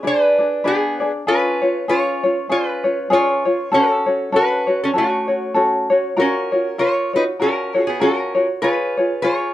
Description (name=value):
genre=Hawaiian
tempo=98 BPM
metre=4/4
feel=swing 57% on 8ths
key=F# minor, F# major from 6.2 s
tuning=A4 = 440 Hz
part: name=lap resonator guitar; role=melody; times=0.0-9.5 s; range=A3 to C#5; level=-20 LUFS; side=equal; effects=none
part: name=tenor ukulele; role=accompaniment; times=0.0-9.5 s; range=C#4 to D5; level=-18 LUFS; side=left 1 dB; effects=none
room=moderate small room reverb, RT60 0.6 s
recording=dark, warm production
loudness=-16 LUFS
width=side -14 dB against mid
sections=0.0-6.2 A section; 6.2-9.5 B section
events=none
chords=0.0 G#dim; 1.3 C#; 3.7 F#m; 6.2 F#maj7; 8.6 C#7